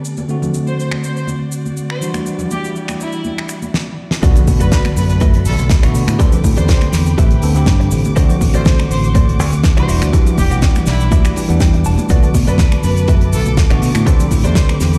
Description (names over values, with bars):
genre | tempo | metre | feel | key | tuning
nu-disco, nu disco | 122 BPM | 4/4 | swing 53% on 16ths | unclear | A4 = 439 Hz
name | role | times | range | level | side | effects
bell-like tine electric piano | accompaniment | 0.0-15.0 s | D3 to A4 | -22 LUFS | equal | vintage 12-bit sampler grit, sidechain pumping
dark studio violin section | sustained chords | 0.0-15.0 s | G3 to D6 | -33 LUFS | equal | sidechain pumping
damped 70s drum kit | drums | 0.0-15.0 s | cabasa, finger snaps, hi-hat, snare drum | -24 LUFS | equal | studio reverb
congas | percussion | 0.2-14.8 s | none | -27 LUFS | equal | none
clear chamber violin section | melody | 0.7-14.6 s | E4 to C5 | -29 LUFS | equal | delay
direct-recorded clean electric guitar | riff | 4.2-14.7 s | F#4 to A5 | -29 LUFS | equal | analog chorus, vintage 12-bit sampler grit, delay
fingered electric bass | bass | 4.2-15.0 s | E1 to B2 | -18 LUFS | equal | none
electronic kick drum | drums | 4.2-14.7 s | none | -15 LUFS | equal | overdrive, studio reverb
impact | sound effects | 4.3-6.2 s | none | -23 LUFS | equal | none
room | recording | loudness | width
light reverb, studio ambience | played on a big sound system in a bare room, large studio reverb | -14 LUFS | mono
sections
0.0-4.2 A section; 4.2-15.0 B section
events
filter sweep on drum 0.0-4.2; drum fill 3.7-4.2; drop 4.2-15.0; impact 4.2-6.2; clean electric guitar fill 10.6-12.1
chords
0.3 D7; 2.0 Em9; 4.2 Bm7; 6.2 Am11; 8.2 D7; 9.9 Em9; 12.1 Bm7; 14.1 Am11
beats
| 0.30 0.79 1.28 1.77 | 2.26 2.76 3.25 3.74 | 4.23 4.72 5.21 5.71 | 6.20 6.69 7.18 7.67 | 8.16 8.66 9.15 9.64 | 10.13 10.62 11.12 11.61 | 12.10 12.59 13.08 13.57 | 14.07 14.56